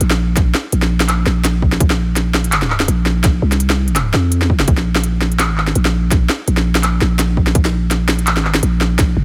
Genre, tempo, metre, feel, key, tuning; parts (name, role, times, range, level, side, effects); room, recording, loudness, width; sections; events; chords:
half-time drum and bass; 167 BPM; 4/4; swing 55% on 16ths, half-time; A4 = 439 Hz
growling 808-style bass; bass; 0.0-9.2 s; F1 to F2; -18 LUFS; equal
organic electronic drum kit; drums; 0.0-9.1 s; handclaps, hi-hat, snare drum; -20 LUFS; equal
electronic kick drum; drums; 0.4-9.1 s; -17 LUFS; equal
little or no reverb; -15 LUFS; mono
0.0-9.2 A section